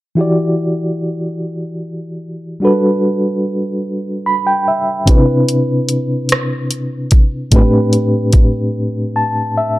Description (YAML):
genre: slow six-eight R&B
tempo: 49 BPM (dotted quarters)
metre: 6/8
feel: straight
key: E minor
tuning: A4 = 440 Hz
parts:
  - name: reed electric piano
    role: accompaniment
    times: 0.2-9.8 s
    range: A2 to B5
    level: -14 LUFS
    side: equal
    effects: fast tremolo
  - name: smooth R&B drum kit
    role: drums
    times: 5.1-8.5 s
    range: hi-hat, kick drum, rim click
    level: -11 LUFS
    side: equal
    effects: none
room: light reverb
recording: dark, warm production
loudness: -13 LUFS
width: side -18 dB against mid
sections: 0.2-9.8 A section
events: reed electric piano fill 3.8-5.1, 8.7-9.8; break 8.7-9.8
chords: 0.2 Em9; 2.6 Gmaj9; 5.1 Cmaj9; 7.5 Am11